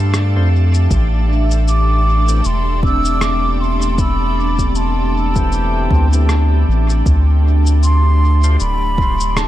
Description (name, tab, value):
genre	ambient dub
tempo	78 BPM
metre	4/4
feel	swing 57% on 16ths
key	A minor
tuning	A4 = 440 Hz
part	mellow hollow concert flute	melody	0.0-9.5 s	F5 to E6	-22 LUFS	right 1 dB	tape echo
part	soft additive organ-like pad	sustained chords	0.0-9.5 s	A3 to A5	-23 LUFS	right 1 dB	ensemble chorus, built-in reverb
part	soft dub sub bass	bass	0.0-9.5 s	D1 to G2	-14 LUFS	equal	none
part	electronic rim click and shaker	drums	0.1-9.5 s	none	-24 LUFS	left 1 dB	dub echo
part	tonewheel organ	stabs	0.4-8.6 s	E3 to C5	-30 LUFS	left 3 dB	overdrive, slow rotary speaker, dub echo
part	electronic kick drum	drums	0.9-9.2 s	none	-18 LUFS	equal	overdrive
part	vibraphone with medium mallets	arpeggios	1.4-9.5 s	B3 to D6	-26 LUFS	equal	tape echo
room	digital ambience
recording	none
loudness	-12 LUFS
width	side -14 dB against mid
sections	0.0-9.5 A section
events	none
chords	0.0 Dm7; 0.9 Am7; 7.1 D7(no3)